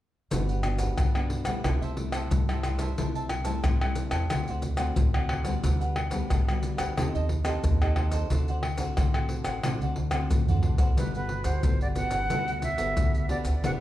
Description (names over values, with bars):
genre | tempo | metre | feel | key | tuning
samba and choro | 90 BPM | 4/4 | straight | G major | A4 = 440 Hz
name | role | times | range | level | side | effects
cavaquinho | accompaniment | 0.3-13.8 s | D4 to A5 | -37 LUFS | right 1 dB | none
nylon-string guitar | accompaniment | 0.3-13.8 s | G2 to A4 | -35 LUFS | left 2 dB | none
upright bass | bass | 0.3-13.8 s | E1 to D3 | -29 LUFS | equal | none
maracas, surdo, pandeiro and tamborim | percussion | 0.3-13.8 s | none | -27 LUFS | equal | none
jazz flute | melody | 11.0-13.7 s | B4 to F#5 | -31 LUFS | right 2 dB | tape echo
room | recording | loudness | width
wet large studio reverb, RT60 0.9 s | heard from further back in the room | -24 LUFS | side -14 dB against mid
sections
0.3-11.0 A section; 11.0-13.8 B section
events
drum fill 10.1-11.0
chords
0.3 Gmaj7; 1.6 C6; 4.3 D7; 5.6 Gmaj7/D; 7.0 Cm6/Eb; 8.3 D7; 11.0 Gmaj9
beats
| 0.32 0.98 1.65 2.31 | 2.98 3.65 4.31 4.98 | 5.64 6.31 6.98 7.64 | 8.31 8.97 9.64 10.31 | 10.97 11.64 12.31 12.97 | 13.64